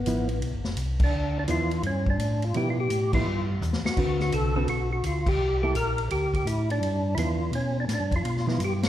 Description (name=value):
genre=soul jazz organ trio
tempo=169 BPM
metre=4/4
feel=swing 65% on 8ths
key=G mixolydian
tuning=A4 = 435 Hz
part: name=percussive tonewheel organ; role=melody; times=0.0-8.9 s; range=B3 to Bb4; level=-28 LUFS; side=equal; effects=slow rotary speaker, chorus vibrato
part: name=mellow tonewheel organ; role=bass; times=0.0-8.9 s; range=F1 to B2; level=-27 LUFS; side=equal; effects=chorus vibrato, slow rotary speaker
part: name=hollow-body jazz guitar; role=accompaniment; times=0.1-8.6 s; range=D3 to B4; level=-31 LUFS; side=right 3 dB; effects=none
part: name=vintage drum kit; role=drums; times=0.1-8.9 s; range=crash cymbal, hi-hat, kick drum, ride cymbal, snare drum, toms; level=-31 LUFS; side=equal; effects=none
room=moderate scoring stage reverb, RT60 1.9 s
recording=recorded in a church or concert hall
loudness=-24 LUFS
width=side -12 dB against mid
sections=0.0-8.9 A section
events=band accent 0.9, 3.1, 5.2; drum fill 3.6-4.0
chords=0.0 G13; 4.0 D6; 5.4 C13; 6.8 G13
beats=0.06 0.41 0.77 | 1.12 1.48 1.83 2.19 | 2.54 2.90 3.26 3.61 | 3.97 4.32 4.68 5.03 | 5.39 5.75 6.10 6.46 | 6.81 7.17 7.52 7.88 | 8.23 8.59